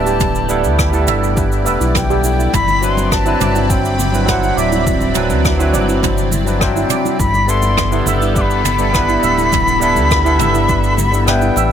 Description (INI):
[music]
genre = sunset chillout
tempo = 103 BPM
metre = 4/4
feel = straight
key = G major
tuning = A4 = 441 Hz
[part]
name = wooden flute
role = melody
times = 0.0-11.7 s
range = E5 to D6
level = -18 LUFS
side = left 3 dB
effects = ping-pong delay
[part]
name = barky tine electric piano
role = accompaniment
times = 0.0-11.7 s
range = F#3 to C5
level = -19 LUFS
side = moving between left 6 dB and right 6 dB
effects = auto-pan, ping-pong delay
[part]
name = lush unison pad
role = sustained chords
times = 0.0-11.7 s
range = F#3 to B5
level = -22 LUFS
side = equal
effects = chorus, phaser
[part]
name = round analog bass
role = bass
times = 0.0-11.7 s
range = D1 to D2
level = -18 LUFS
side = equal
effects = tube saturation
[part]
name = steel pan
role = arpeggios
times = 0.1-11.6 s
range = E4 to E5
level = -23 LUFS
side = right 7 dB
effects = ping-pong delay
[part]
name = jazz brush drum kit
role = drums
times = 0.1-11.7 s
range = cabasa, rim click, toms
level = -22 LUFS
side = right 2 dB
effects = none
[part]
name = electronic kick drum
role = drums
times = 0.2-10.8 s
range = none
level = -21 LUFS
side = equal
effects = overdrive
[part]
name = congas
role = percussion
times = 2.7-11.7 s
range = none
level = -26 LUFS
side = left 2 dB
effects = none
[sound]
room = moderate plate reverb, RT60 1.3 s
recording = bright 1980s-style digital production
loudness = -12 LUFS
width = side -9 dB against mid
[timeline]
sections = 0.0-11.7 A section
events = kick drops out 11.3-11.7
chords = 0.0 G69; 2.5 Cmaj9#11; 7.2 G69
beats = | 0.20 0.79 1.37 1.95 | 2.53 3.12 3.70 4.28 | 4.86 5.45 6.03 6.61 | 7.19 7.78 8.36 8.94 | 9.53 10.11 10.69 11.27